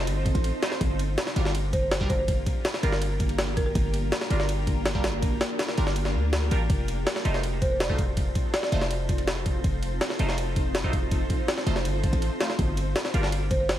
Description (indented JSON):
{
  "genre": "drum and bass, jungle",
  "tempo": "163 BPM",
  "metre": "4/4",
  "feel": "straight",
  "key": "G minor",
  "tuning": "A4 = 441 Hz",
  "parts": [
    { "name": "warm 808-style bass", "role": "bass", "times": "0.0-13.8 s", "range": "F1 to D2", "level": "-27 LUFS", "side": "equal", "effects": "none" },
    { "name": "jungle sampler-style drum kit", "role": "drums", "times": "0.1-13.8 s", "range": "kick drum, ride cymbal, snare drum", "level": "-27 LUFS", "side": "equal", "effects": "none" },
    { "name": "band-passed chord stab", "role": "stabs", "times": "0.6-13.3 s", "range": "G3 to C5", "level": "-36 LUFS", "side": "right 2 dB", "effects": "phaser, cassette tape, dub echo" },
    { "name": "folk marimba with medium mallets", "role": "melody", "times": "1.7-3.7, 7.6-8.7, 13.5-13.7 s", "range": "Bb4 to D5", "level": "-32 LUFS", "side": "right 1 dB", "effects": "dub echo" }
  ],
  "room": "digital ambience",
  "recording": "vinyl crackle",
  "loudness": "-23 LUFS",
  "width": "side -12 dB against mid",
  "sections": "0.0-13.8 A section",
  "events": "none",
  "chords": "0.0 F7; 0.8 Gm7; 6.7 F7; 12.6 Gm7"
}